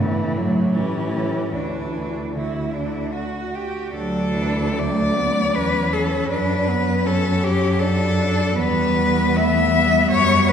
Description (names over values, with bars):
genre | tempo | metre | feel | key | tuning
classical, lyrical piece for cello ensemble | 70-84 BPM | 3/4 | rubato | D major | A4 = 438 Hz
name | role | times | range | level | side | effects
rich cello | melody | 0.0-10.5 s | D4 to E5 | -22 LUFS | left 4 dB | none
rich cello | second line | 0.0-10.5 s | A3 to G4 | -24 LUFS | right 3 dB | none
dark cello | accompaniment | 0.0-10.5 s | D3 to A3 | -24 LUFS | left 1 dB | none
dark cello | bass | 0.0-10.5 s | D2 to A2 | -25 LUFS | right 1 dB | none
room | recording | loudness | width
wet concert hall reverb, RT60 2.2 s | heard from further back in the room | -18 LUFS | side -8 dB against mid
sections
0.0-3.9 A section; 3.9-10.5 B section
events
none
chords
0.0 D/A; 0.7 A7; 1.5 D; 6.3 D/F#; 8.6 Em